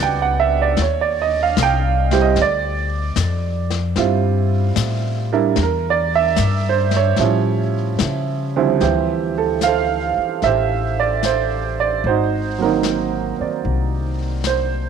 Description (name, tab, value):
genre	jazz ballad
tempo	75 BPM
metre	4/4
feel	swing 68% on 8ths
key	D minor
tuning	A4 = 441 Hz
part	warm upright piano	accompaniment	0.0-14.9 s	D2 to G5	-18 LUFS	right 9 dB	none
part	upright bass	bass	0.0-14.9 s	G#1 to C#3	-21 LUFS	left 2 dB	none
part	vintage brush drum kit	drums	0.8-14.9 s	brushed snare drum, hi-hat, snare drum	-26 LUFS	left 11 dB	none
room	light reverb, studio reverb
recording	1960s-style stereo with parts hard left and right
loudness	-16 LUFS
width	side -7 dB against mid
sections	0.0-8.8 A section; 8.8-14.9 B section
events	none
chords	0.0 Em9; 0.8 Eb; 2.4 Dm11; 5.6 Edim7; 7.2 A7b13; 8.8 Dm11; 12.0 G#9